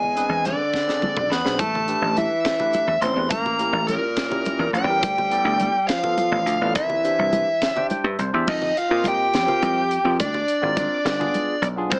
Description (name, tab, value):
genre	electric jazz fusion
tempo	70 BPM (dotted quarters)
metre	6/8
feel	straight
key	F dorian from 8.5 s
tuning	A4 = 440 Hz
part	smooth overdriven lead guitar	melody	0.0-12.0 s	Bb4 to C6	-25 LUFS	equal	none
part	breathy tenor saxophone	second line	0.0-12.0 s	Bb2 to G4	-30 LUFS	equal	none
part	dry thumbed slap bass	bass	0.0-12.0 s	G1 to Bb2	-28 LUFS	equal	none
part	congas	percussion	0.0-12.0 s	none	-34 LUFS	equal	none
part	barky tine electric piano	accompaniment	0.2-11.9 s	A3 to G5	-30 LUFS	equal	phaser
part	tight funk drum kit	drums	0.2-12.0 s	crash cymbal, hi-hat, kick drum, snare drum, toms	-30 LUFS	equal	none
room	light reverb, small room ambience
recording	small speaker sound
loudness	-22 LUFS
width	mono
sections	0.0-8.5 A section; 8.5-12.0 B section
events	drum fill 0.7-1.6; tine electric piano fill 7.6-8.5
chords	0.0 E7b13; 1.6 A5; 3.3 A7b9; 5.0 Dm69; 6.8 C; 8.5 Fsus2; 10.2 Dm7b5; 11.1 G7b9